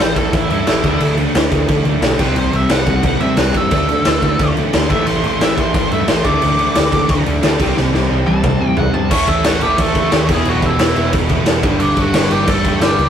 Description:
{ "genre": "punk rock", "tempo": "178 BPM", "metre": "4/4", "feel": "straight", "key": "unclear", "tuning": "A4 = 439 Hz", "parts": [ { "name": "nasal lead guitar with a parked wah", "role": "melody", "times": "0.0-13.1 s", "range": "E3 to D6", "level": "-20 LUFS", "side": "equal", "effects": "overdrive" }, { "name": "crunchy overdriven guitar", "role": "riff", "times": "0.0-13.0 s", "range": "E2 to D4", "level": "-20 LUFS", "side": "equal", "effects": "none" }, { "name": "sludgy distorted guitar", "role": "riff", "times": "0.0-13.0 s", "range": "E2 to D4", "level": "-23 LUFS", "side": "equal", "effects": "overdrive" }, { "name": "picked electric bass", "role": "bass", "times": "0.0-13.1 s", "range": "E1 to A2", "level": "-20 LUFS", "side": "equal", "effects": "none" }, { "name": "raw garage drum kit", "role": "drums", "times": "0.2-13.1 s", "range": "crash cymbal, kick drum, snare drum, toms", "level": "-16 LUFS", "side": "equal", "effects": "none" } ], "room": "light reverb", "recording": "rough rehearsal-room recording, warm saturation", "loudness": "-12 LUFS", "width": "side -8 dB against mid", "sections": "0.0-9.1 A section; 9.1-13.1 B section", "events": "lead electric guitar solo 0.0-9.1; drum fill 7.8-9.1", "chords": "0.0 A5; 0.8 D5; 2.2 C5; 3.7 D5; 4.9 A5; 6.3 D5; 7.6 C5; 9.1 A; 10.3 E; 11.6 G5", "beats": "0.00 0.34 0.68 | 1.01 1.35 1.69 2.03 | 2.37 2.71 3.04 3.38 | 3.72 4.06 4.40 4.73 | 5.07 5.41 5.75 6.08 | 6.42 6.76 7.10 7.43 | 7.77 8.11 8.45 8.78 | 9.12 9.46 9.79 10.13 | 10.46 10.80 11.14 11.47 | 11.81 12.14 12.48 12.82" }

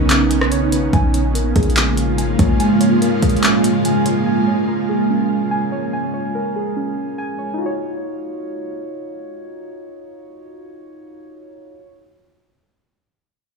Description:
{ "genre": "hip hop, atmospheric cloud-rap", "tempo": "144 BPM", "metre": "4/4", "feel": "half-time", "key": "Eb minor", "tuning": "A4 = 440 Hz", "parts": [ { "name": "warbly dusty pluck", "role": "melody", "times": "0.0-0.9 s", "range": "none", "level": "barely audible", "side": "none", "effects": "none" }, { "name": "ethereal airy pad", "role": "sustained chords", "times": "0.0-5.9 s", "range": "C#3 to F4", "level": "-17 LUFS", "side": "right 2 dB", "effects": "ensemble chorus, built-in reverb, sidechain pumping" }, { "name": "muted felt-like synth keys", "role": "arpeggios", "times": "0.0-11.9 s", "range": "C#4 to Ab5", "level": "-25 LUFS", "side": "equal", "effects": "chorus, digital delay" }, { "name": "clean 808-style bass", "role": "bass", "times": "0.0-2.6 s", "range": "Bb1 to B1", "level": "-19 LUFS", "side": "equal", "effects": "none" }, { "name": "smooth R&B drum kit", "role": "drums", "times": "0.1-4.2 s", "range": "handclaps, hi-hat, kick drum, rim click", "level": "-18 LUFS", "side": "equal", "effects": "overdrive" } ], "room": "moderate digital room reverb, RT60 1.0 s", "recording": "small room ambience", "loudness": "-15 LUFS", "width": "side -4 dB against mid", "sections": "0.9-7.6 A section; 7.6-10.9 B section", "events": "none", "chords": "0.0 Bmaj9; 0.9 Bbm7; 7.6 Ebm9", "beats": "0.10 0.52 | 0.93 1.35 1.76 2.18 | 2.60 3.02 3.43 3.85 | 4.26 4.68 5.10 5.51 | 5.93 6.35 6.76 7.18 | 7.60 8.02 8.43 8.85 | 9.27 9.68 10.10 10.52" }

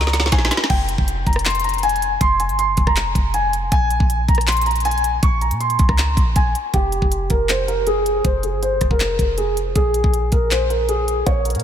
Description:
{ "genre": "hip hop, trap", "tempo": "159 BPM", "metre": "4/4", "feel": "half-time", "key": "F minor", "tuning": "A4 = 440 Hz", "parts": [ { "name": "dark concert grand piano", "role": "melody", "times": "0.0-11.6 s", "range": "G4 to Db6", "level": "-20 LUFS", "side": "equal", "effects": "lush chorus, low-pass filter, analog delay" }, { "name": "clean 808-style bass", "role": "bass", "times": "0.0-11.6 s", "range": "F1 to Bb2", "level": "-21 LUFS", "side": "equal", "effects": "none" }, { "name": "trap drum kit", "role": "drums", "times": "0.0-11.6 s", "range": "crash cymbal, handclaps, hi-hat, kick drum, rim click, snare drum", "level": "-20 LUFS", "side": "equal", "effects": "none" } ], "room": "light reverb", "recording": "none", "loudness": "-16 LUFS", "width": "side -9 dB against mid", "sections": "0.0-6.7 A section; 6.7-11.6 B section", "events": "drum fill 0.0-0.7; filter sweep on grand piano 6.7-11.6", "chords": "0.0 Bbm7; 0.7 Fm; 3.7 Bb7(no3); 6.7 Fm; 9.8 Bb7(no3)", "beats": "0.32 | 0.70 1.08 1.45 1.83 | 2.21 2.59 2.96 3.34 | 3.72 4.10 4.47 4.85 | 5.23 5.61 5.98 6.36 | 6.74 7.12 7.49 7.87 | 8.25 8.62 9.00 9.38 | 9.76 10.13 10.51 10.89 | 11.27" }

